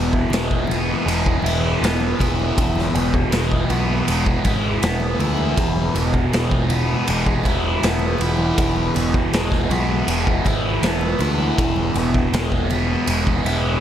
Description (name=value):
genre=psychedelic rock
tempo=80 BPM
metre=4/4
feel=straight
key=E major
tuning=A4 = 439 Hz
part: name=fuzz guitar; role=riff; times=0.0-13.8 s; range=E2 to E4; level=-21 LUFS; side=equal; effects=distortion, phaser
part: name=growling picked electric bass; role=bass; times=0.0-13.8 s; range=E1 to D2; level=-23 LUFS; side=equal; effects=overdrive
part: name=tanpura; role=drone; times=0.0-13.8 s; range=E2 to E3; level=-30 LUFS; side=right 1 dB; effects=none
part: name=raw garage drum kit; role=drums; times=0.1-13.6 s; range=kick drum, ride cymbal, snare drum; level=-22 LUFS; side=equal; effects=none
part: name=congas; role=percussion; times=0.3-13.6 s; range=none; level=-33 LUFS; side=left 1 dB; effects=none
room=light reverb, small room ambience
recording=echo-heavy mix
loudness=-17 LUFS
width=side -10 dB against mid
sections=0.0-13.8 A section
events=none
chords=0.0 E